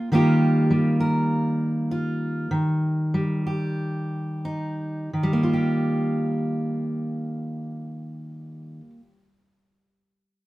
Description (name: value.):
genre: folk, solo fingerstyle acoustic guitar.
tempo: 86-102 BPM.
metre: 4/4.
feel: straight.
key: Eb major.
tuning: A4 = 440 Hz.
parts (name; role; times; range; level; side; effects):
fingerpicked steel-string acoustic guitar; solo; 0.0-9.2 s; Eb3 to Bb4; -22 LUFS; equal; none.
room: moderate large studio reverb, RT60 1.0 s.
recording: band playing live in one room.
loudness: -22 LUFS.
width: side -18 dB against mid.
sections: 0.1-5.1 A section; 5.1-7.9 B section.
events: slowing down 0.1-5.1.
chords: 0.1 Ebadd9; 2.5 Eb; 5.1 Ebadd9.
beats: | 0.12 0.70 1.30 1.90 | 2.51 3.14 3.78 4.44 | 5.13 5.83 6.52 7.22.